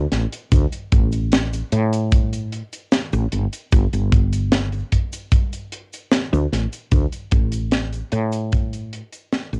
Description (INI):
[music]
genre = vaporwave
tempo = 75 BPM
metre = 4/4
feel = straight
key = unclear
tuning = A4 = 440 Hz
[part]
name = woody fretless electric bass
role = bass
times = 0.0-9.6 s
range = G1 to A2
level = -23 LUFS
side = equal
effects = none
[part]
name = crisp fusion drum kit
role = drums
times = 0.1-9.6 s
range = cabasa, hi-hat, snare drum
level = -24 LUFS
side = equal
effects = vintage 12-bit sampler grit, cassette tape
[part]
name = kick drum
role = drums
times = 0.5-8.7 s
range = none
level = -20 LUFS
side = equal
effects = vintage 12-bit sampler grit, cassette tape
[sound]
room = light reverb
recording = home recording on cassette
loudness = -20 LUFS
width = mono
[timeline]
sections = 0.0-9.6 A section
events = fade-out 6.4-9.6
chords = none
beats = 0.52 1.32 | 2.12 2.92 3.72 4.52 | 5.32 6.12 6.92 7.72 | 8.52 9.32